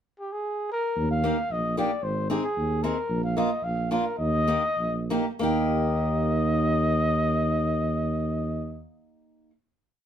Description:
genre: alpine folk, alpine dance band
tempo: 90-113 BPM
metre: 2/4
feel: straight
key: Eb major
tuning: A4 = 440 Hz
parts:
  - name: dark trumpet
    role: melody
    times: 0.2-8.8 s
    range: G4 to F5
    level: -28 LUFS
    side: left 1 dB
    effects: none
  - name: mellow tuba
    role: bass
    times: 1.0-8.8 s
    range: Ab1 to Eb2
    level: -27 LUFS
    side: right 1 dB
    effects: none
  - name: picked old ladder-braced acoustic guitar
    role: accompaniment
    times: 1.2-9.5 s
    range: Bb3 to Ab4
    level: -28 LUFS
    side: equal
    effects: none
room: moderate studio reverb, RT60 0.6 s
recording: band playing live in one room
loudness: -23 LUFS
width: side -9 dB against mid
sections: 0.0-1.0 pickup bar; 1.0-5.4 A section; 5.4-8.1 final chord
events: slowing down 3.1-5.4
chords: 0.0 N.C.; 1.0 Eb; 2.0 Ab; 3.1 Bbsus4; 3.6 Bb; 4.2 Eb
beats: 0.43 | 0.96 1.50 | 2.04 2.57 | 3.10 3.63 | 4.19 4.78 | 5.41 6.07 | 6.73 7.39

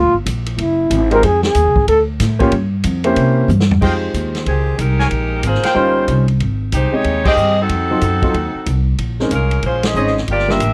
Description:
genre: jazz, big band swing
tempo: 186 BPM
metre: 4/4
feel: swing 63% on 8ths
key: F minor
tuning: A4 = 440 Hz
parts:
  - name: breathy trombone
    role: melody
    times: 0.0-2.0 s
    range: E4 to Bb4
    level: -16 LUFS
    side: equal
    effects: none
  - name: upright bass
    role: bass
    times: 0.0-10.7 s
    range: Gb1 to C3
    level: -20 LUFS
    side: equal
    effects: none
  - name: vintage drum kit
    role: drums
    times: 0.3-10.7 s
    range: crash cymbal, hi-hat, kick drum, ride cymbal, snare drum, toms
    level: -24 LUFS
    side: equal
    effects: none
  - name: warm grand piano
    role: accompaniment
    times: 1.1-10.6 s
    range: C3 to Eb5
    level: -20 LUFS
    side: equal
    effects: none
  - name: clear trumpet section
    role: stabs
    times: 3.8-7.3, 10.0-10.3 s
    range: Ab4 to Ab5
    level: -23 LUFS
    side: equal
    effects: none
  - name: warm saxophone section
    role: melody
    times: 4.5-10.7 s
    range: Eb3 to E5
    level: -20 LUFS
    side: equal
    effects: none
room: little or no reverb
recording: dry, close 1970s-style studio recording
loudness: -16 LUFS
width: mono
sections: 0.0-3.8 A section; 3.8-10.7 B section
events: trombone solo 0.0-3.8; drum fill 3.5-3.8; band accent 7.2, 9.8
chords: 0.0 Gm; 0.6 Gbsus2; 1.2 Fm7; 1.9 D5; 2.5 Gm7b5; 3.2 C7b9; 3.8 Fm9; 5.1 Bb5; 5.8 Eb13; 6.4 Abmaj7; 7.7 F7b9; 9.0 Bbm11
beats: 0.26 0.58 0.91 | 1.23 1.55 1.87 2.20 | 2.52 2.84 3.17 3.49 | 3.81 4.13 4.46 4.78 | 5.10 5.43 5.75 6.07 | 6.40 6.72 7.04 7.37 | 7.69 8.01 8.34 8.66 | 8.98 9.30 9.63 9.95 | 10.27 10.60

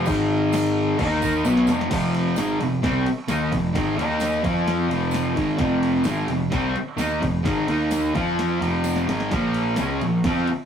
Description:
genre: garage rock duo or trio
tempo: 130 BPM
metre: 4/4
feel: straight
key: F minor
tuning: A4 = 436 Hz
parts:
  - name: fuzz guitar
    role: riff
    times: 0.0-10.5 s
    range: F2 to F4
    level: -21 LUFS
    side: equal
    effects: distortion
  - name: fuzz picked electric bass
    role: bass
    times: 0.0-10.5 s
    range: F1 to F2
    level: -28 LUFS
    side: equal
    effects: overdrive, tube saturation
  - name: punchy analog drum machine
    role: drums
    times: 0.1-10.6 s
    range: crash cymbal, kick drum, ride cymbal, snare drum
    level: -29 LUFS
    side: equal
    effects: none
  - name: tambourine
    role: percussion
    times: 0.1-9.9 s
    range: none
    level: -40 LUFS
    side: right 6 dB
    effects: none
room: moderate studio reverb, RT60 0.6 s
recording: rough rehearsal-room recording, tube saturation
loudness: -20 LUFS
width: side -8 dB against mid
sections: 0.0-1.9 A section; 1.9-10.7 B section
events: drum fill 1.4-1.9, 8.8-9.3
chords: 0.1 Ab5; 1.0 Eb5; 1.4 F5; 1.9 Fm; 4.0 Eb5; 4.4 Fm; 7.7 Eb5; 8.1 Fm; 9.3 Bb5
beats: | 0.07 0.53 0.98 1.44 | 1.90 2.36 2.83 3.29 | 3.75 4.21 4.67 5.14 | 5.60 6.06 6.53 6.99 | 7.45 7.92 8.38 8.84 | 9.31 9.77 10.23

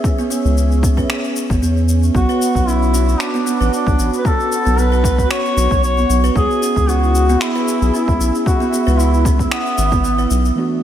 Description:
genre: organic downtempo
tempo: 114 BPM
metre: 4/4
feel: swing 54% on 16ths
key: unclear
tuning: A4 = 440 Hz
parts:
  - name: warm analog pad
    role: sustained chords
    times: 0.0-10.8 s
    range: E3 to E5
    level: -24 LUFS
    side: left 1 dB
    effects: wide subtle chorus, sidechain pumping
  - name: buzzing kalimba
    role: arpeggios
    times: 0.0-10.3 s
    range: B3 to B4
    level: -20 LUFS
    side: right 3 dB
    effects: analog delay
  - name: electronic kick drum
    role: drums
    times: 0.0-10.0 s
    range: none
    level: -18 LUFS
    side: equal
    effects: none
  - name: electronic shaker and finger snaps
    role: drums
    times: 0.0-10.5 s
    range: none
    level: -26 LUFS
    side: left 2 dB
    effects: none
  - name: round analog bass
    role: bass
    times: 0.5-10.5 s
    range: G#1 to E2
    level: -16 LUFS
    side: equal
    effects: sidechain pumping
  - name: warm duduk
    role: melody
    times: 2.2-10.3 s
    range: B3 to C#5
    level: -19 LUFS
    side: left 1 dB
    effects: analog delay
  - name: tine electric piano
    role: accompaniment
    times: 10.6-10.8 s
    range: E3 to F#4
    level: -19 LUFS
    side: right 2 dB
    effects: sidechain pumping, low-pass filter
room: moderate lush hall reverb, RT60 1.9 s, digital ambience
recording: dreamy mix soaked in reverb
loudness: -13 LUFS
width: side -10 dB against mid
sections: 0.0-10.6 A section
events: none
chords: 0.0 C#m7; 2.1 Bm; 6.4 C#m7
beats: | 0.04 0.57 1.09 1.62 | 2.15 2.67 3.20 3.73 | 4.25 4.78 5.30 5.83 | 6.36 6.88 7.41 7.94 | 8.46 8.99 9.52 10.04 | 10.57

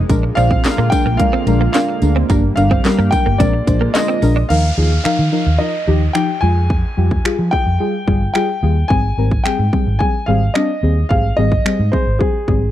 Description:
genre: dance-pop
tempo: 109 BPM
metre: 4/4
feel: straight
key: Eb major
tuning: A4 = 438 Hz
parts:
  - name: chorused pulse-width pad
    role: sustained chords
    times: 0.0-4.5 s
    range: D3 to G4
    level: -24 LUFS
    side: right 3 dB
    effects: sidechain pumping
  - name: direct-recorded clean electric guitar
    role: riff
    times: 0.0-4.5 s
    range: Bb3 to D4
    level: -22 LUFS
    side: right 4 dB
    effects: ensemble chorus
  - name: vintage muted fingered electric bass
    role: bass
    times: 0.0-12.7 s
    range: G1 to F3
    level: -16 LUFS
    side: equal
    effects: sidechain pumping
  - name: deep mellow chord stab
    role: accompaniment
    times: 0.1-12.6 s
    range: F3 to C5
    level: -20 LUFS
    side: left 2 dB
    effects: chorus
  - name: house drum kit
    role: drums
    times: 0.1-12.6 s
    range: crash cymbal, finger snaps, handclaps, hi-hat, kick drum, snare drum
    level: -18 LUFS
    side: equal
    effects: overdrive
  - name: tambourine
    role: percussion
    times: 0.1-4.3 s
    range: none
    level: -35 LUFS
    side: left 11 dB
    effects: none
  - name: warm concert grand piano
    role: melody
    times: 0.4-12.7 s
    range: Ab4 to Ab5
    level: -21 LUFS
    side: left 1 dB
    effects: tape echo
  - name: downlifter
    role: sound effects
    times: 4.5-8.9 s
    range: none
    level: -30 LUFS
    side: right 1 dB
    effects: none
room: little or no reverb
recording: dry, close 1970s-style studio recording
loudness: -13 LUFS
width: side -12 dB against mid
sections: 0.0-4.5 A section; 4.5-12.7 B section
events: none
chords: 0.1 Bb7; 2.3 Gm; 3.4 Bb7; 4.5 Ebsus2; 6.4 Fmadd9; 8.9 Abmaj7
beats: | 0.10 0.65 1.20 1.75 | 2.30 2.85 3.40 3.95 | 4.50 5.05 5.60 6.15 | 6.70 7.25 7.80 8.35 | 8.90 9.45 10.00 10.55 | 11.10 11.65 12.21

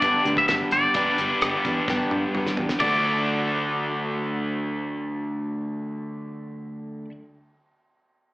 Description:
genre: folk rock and heartland rock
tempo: 129 BPM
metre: 4/4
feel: straight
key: D major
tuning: A4 = 440 Hz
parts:
  - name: twangy electric guitar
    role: melody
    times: 0.0-7.0 s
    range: D5 to E5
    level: -23 LUFS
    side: equal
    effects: slapback echo
  - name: picked twelve-string acoustic guitar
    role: accompaniment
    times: 0.0-7.2 s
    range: G2 to G4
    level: -31 LUFS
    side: left 1 dB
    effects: slapback echo
  - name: overdriven electric guitar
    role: riff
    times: 0.0-7.1 s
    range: D3 to B4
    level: -27 LUFS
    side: equal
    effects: slapback echo
  - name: fingered electric bass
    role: bass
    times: 0.0-7.1 s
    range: G1 to G2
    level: -33 LUFS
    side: equal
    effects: none
  - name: damped 70s drum kit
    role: drums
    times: 0.0-2.9 s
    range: hi-hat, kick drum, ride cymbal, rim click, snare drum, toms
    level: -30 LUFS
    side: equal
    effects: none
room: moderate club reverb, RT60 0.8 s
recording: live gig heard through the venue's PA, club reverb, AM radio sound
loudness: -22 LUFS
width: side -20 dB against mid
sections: 0.0-2.8 A section; 2.8-6.5 B section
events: drum fill 1.9-2.8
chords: 0.0 G; 2.8 D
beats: 0.02 0.48 | 0.94 1.41 1.87 2.34 | 2.80 3.27 3.73 4.20 | 4.66 5.13 5.59 6.05

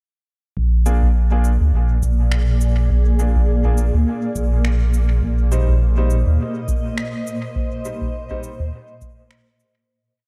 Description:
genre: ambient dub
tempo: 103 BPM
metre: 4/4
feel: swing 57% on 16ths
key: Bb mixolydian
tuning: A4 = 440 Hz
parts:
  - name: granular cloud pad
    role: sustained chords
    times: 1.3-9.9 s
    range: Bb2 to Eb5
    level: -27 LUFS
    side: equal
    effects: built-in reverb
  - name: round analog bass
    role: bass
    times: 0.6-8.7 s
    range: Bb1 to Eb2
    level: -18 LUFS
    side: equal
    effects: none
  - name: electronic kick drum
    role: drums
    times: 0.6-9.1 s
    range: none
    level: -25 LUFS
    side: equal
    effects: none
  - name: clear upright piano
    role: stabs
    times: 0.9-8.5 s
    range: G3 to C5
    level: -32 LUFS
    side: equal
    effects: dub echo
  - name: electronic shaker and finger snaps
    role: drums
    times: 0.9-9.7 s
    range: none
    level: -35 LUFS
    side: equal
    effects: overdrive, dub echo
room: light reverb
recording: none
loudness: -19 LUFS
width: mono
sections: 0.6-9.9 groove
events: fade-out 6.8-9.9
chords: 0.6 Bb7; 5.2 Cm/Bb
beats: | 0.57 1.15 1.74 2.32 | 2.90 3.48 4.07 4.65 | 5.23 5.81 6.39 6.98 | 7.56 8.14 8.72 9.31

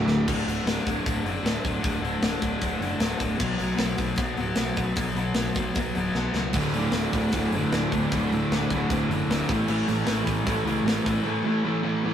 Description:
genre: punk rock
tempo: 153 BPM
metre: 4/4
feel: straight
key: D major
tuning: A4 = 439 Hz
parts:
  - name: distorted electric guitar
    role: riff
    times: 0.0-12.1 s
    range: D2 to B3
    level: -27 LUFS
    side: left 2 dB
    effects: distortion
  - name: overdriven semi-hollow guitar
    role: riff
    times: 0.0-0.8, 6.5-12.1 s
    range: D2 to F#4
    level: -26 LUFS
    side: right 1 dB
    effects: none
  - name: fuzz picked electric bass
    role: bass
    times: 0.0-11.2 s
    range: D1 to C#2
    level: -32 LUFS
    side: equal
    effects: overdrive
  - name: tight metal drum kit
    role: drums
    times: 0.1-11.2 s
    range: crash cymbal, hi-hat, kick drum, snare drum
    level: -28 LUFS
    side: left 1 dB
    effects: none
room: moderate stone room reverb, RT60 1.3 s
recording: rough rehearsal-room recording, warm saturation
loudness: -23 LUFS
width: side -9 dB against mid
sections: 0.3-12.1 A section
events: drum fill 0.0, 6.1-6.5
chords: 0.3 D5; 3.4 B5; 6.5 D5; 9.5 A5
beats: | 0.27 0.66 1.05 1.44 | 1.83 2.22 2.62 3.01 | 3.40 3.79 4.18 4.58 | 4.97 5.36 5.75 6.14 | 6.54 6.93 7.32 7.72 | 8.11 8.50 8.89 9.29 | 9.68 10.07 10.47 10.86 | 11.25 11.64 12.04

